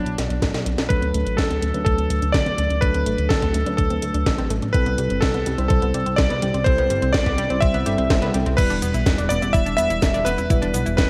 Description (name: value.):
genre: italo disco.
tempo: 125 BPM.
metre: 4/4.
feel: straight.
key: unclear.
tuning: A4 = 440 Hz.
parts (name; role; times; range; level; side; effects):
bright electric grand piano; melody; 0.0-11.1 s; D4 to E5; -26 LUFS; equal; low-pass filter, digital delay.
mellow tine electric piano; stabs; 0.0-11.1 s; F#3 to D5; -29 LUFS; equal; none.
chorused synth bass; bass; 0.0-11.1 s; E1 to D2; -27 LUFS; equal; tube saturation.
house drum kit; drums; 0.1-11.1 s; cabasa, crash cymbal, hi-hat, snare drum; -29 LUFS; equal; overdrive, gated reverb.
electronic kick drum; drums; 0.4-11.1 s; none; -24 LUFS; equal; none.
analog pluck; arpeggios; 0.9-11.1 s; G3 to E4; -32 LUFS; equal; chorus, digital delay.
room: light reverb, digital ambience.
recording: vinyl crackle.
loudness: -20 LUFS.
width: mono.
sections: 0.9-8.6 A section; 8.6-11.1 B section.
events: drum fill 0.5-0.9; filter sweep on synth arpeggio sound 0.9-8.6.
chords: 0.0 Bm; 0.9 D; 4.7 C6; 8.6 Em.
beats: 0.42 | 0.90 1.38 1.86 2.34 | 2.82 3.30 3.78 4.26 | 4.74 5.22 5.70 6.18 | 6.66 7.14 7.62 8.10 | 8.58 9.06 9.54 10.02 | 10.50 10.98.